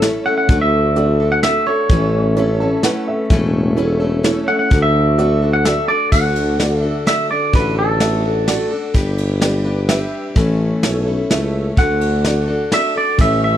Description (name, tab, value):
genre	honky-tonk and classic country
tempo	128 BPM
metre	3/4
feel	straight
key	D major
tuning	A4 = 440 Hz
part	honky-tonk upright piano	accompaniment	0.0-13.1 s	E4 to A5	-23 LUFS	right 3 dB	none
part	picked steel-string acoustic guitar	accompaniment	0.0-13.6 s	A2 to B4	-21 LUFS	left 3 dB	none
part	mellow tuba	bass	0.0-13.6 s	E1 to D2	-18 LUFS	equal	none
part	soft brush drum kit	drums	0.0-13.3 s	crash cymbal, hi-hat, kick drum, ride cymbal, snare drum	-17 LUFS	equal	none
part	twangy electric guitar	melody	0.3-8.7, 11.8-13.6 s	A4 to F#5	-18 LUFS	right 2 dB	none
room	light reverb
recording	dry, close 1970s-style studio recording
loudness	-14 LUFS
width	side -11 dB against mid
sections	0.0-6.1 A section; 6.1-13.6 B section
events	clean electric guitar solo 0.0-6.1; honky-tonk piano fill 2.4-3.3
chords	0.5 D; 1.9 A; 4.7 D; 9.0 G; 10.4 A; 11.8 D